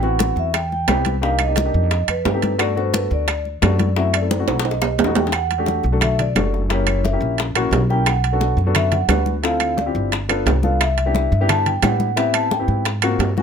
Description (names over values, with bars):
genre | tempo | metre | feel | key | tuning
Afro-Cuban jazz | 175 BPM | 4/4 | straight | G major, E minor from 5.3 s | A4 = 440 Hz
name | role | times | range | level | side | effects
vibraphone with soft mallets | melody | 0.0-13.4 s | B4 to A5 | -23 LUFS | right 1 dB | none
dark baby grand piano | accompaniment | 0.0-13.4 s | A3 to B4 | -23 LUFS | left 4 dB | none
upright bass | bass | 0.0-13.4 s | F#1 to A2 | -21 LUFS | equal | none
bongos | percussion | 0.0-13.4 s | none | -28 LUFS | left 8 dB | none
congas | percussion | 0.0-13.4 s | none | -26 LUFS | left 3 dB | none
timbales | percussion | 0.2-13.4 s | none | -23 LUFS | right 10 dB | none
claves | percussion | 0.5-13.2 s | none | -28 LUFS | right 11 dB | none
room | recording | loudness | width
light reverb | close, detailed microphones | -16 LUFS | side -7 dB against mid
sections
0.0-5.3 A section; 5.3-13.4 B section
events
drum fill 4.3-5.3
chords
0.0 Am9; 1.2 Cm7; 1.9 F9; 2.6 Gmaj9; 4.0 F#m7b5; 4.6 B7; 5.3 Em11; 6.7 F#7b9; 8.1 Bm7; 9.4 Dm7; 10.1 G7; 10.8 Cmaj7; 12.2 Am9; 12.9 G#13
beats
0.20 0.54 0.88 | 1.23 1.57 1.91 2.25 | 2.59 2.94 3.28 3.62 | 3.96 4.30 4.65 4.99 | 5.33 5.67 6.02 6.36 | 6.70 7.04 7.38 7.73 | 8.07 8.41 8.75 9.10 | 9.44 9.78 10.12 10.46 | 10.80 11.15 11.49 11.83 | 12.17 12.51 12.86 13.20